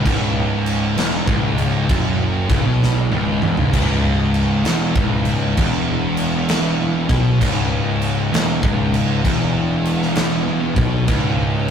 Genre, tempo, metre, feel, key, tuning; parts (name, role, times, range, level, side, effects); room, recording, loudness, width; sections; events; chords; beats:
stoner and doom metal; 65 BPM; 4/4; swing 65% on 8ths; C# minor; A4 = 439 Hz
high-gain distorted guitar; riff; 0.0-11.7 s; C#2 to B2; -24 LUFS; equal; distortion
thick fuzz guitar; riff; 0.0-11.7 s; C#2 to B2; -24 LUFS; left 3 dB; distortion
thick fuzz guitar; riff; 0.0-11.7 s; C#2 to B2; -22 LUFS; right 2 dB; distortion
fuzz picked electric bass; bass; 0.0-11.7 s; C#1 to B1; -24 LUFS; equal; overdrive
big rock drum kit; drums; 0.1-11.7 s; crash cymbal, kick drum, snare drum, toms; -20 LUFS; equal
moderate small room reverb, RT60 0.5 s; rough rehearsal-room recording, tube saturation; -16 LUFS; side -8 dB against mid
0.0-11.7 A section
drum fill 2.8-3.7
0.0 C#m
| 0.05 0.97 1.89 2.81 | 3.73 4.65 5.57 6.49 | 7.41 8.33 9.24 10.16 | 11.09